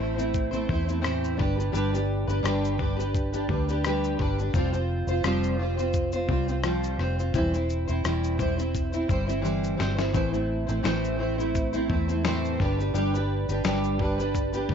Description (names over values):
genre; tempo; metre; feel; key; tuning
acoustic pop; 86 BPM; 4/4; swing 55% on 16ths; unclear; A4 = 439 Hz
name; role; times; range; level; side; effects
fingerpicked plugged-in steel-string acoustic guitar; accompaniment; 0.0-14.7 s; A2 to C5; -27 LUFS; equal; double-tracked left and right
vintage muted fingered electric bass; bass; 0.0-14.7 s; E1 to E2; -28 LUFS; equal; none
dusty soul sampler-style drum kit; drums; 0.2-14.7 s; kick drum, rim click, shaker, snare drum; -31 LUFS; left 2 dB; none
room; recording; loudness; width
light reverb; 1960s-style stereo, nothing above 7.6 kHz; -24 LUFS; side -7 dB against mid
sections
0.0-14.7 A section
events
drum fill 9.4-10.1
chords
0.0 Am; 1.4 G; 4.5 Fsus2; 7.3 C/E; 10.1 Am; 12.6 G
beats
0.34 1.04 | 1.74 2.44 3.14 3.84 | 4.54 5.25 5.95 6.65 | 7.35 8.05 8.75 9.45 | 10.15 10.85 11.55 12.25 | 12.95 13.64 14.34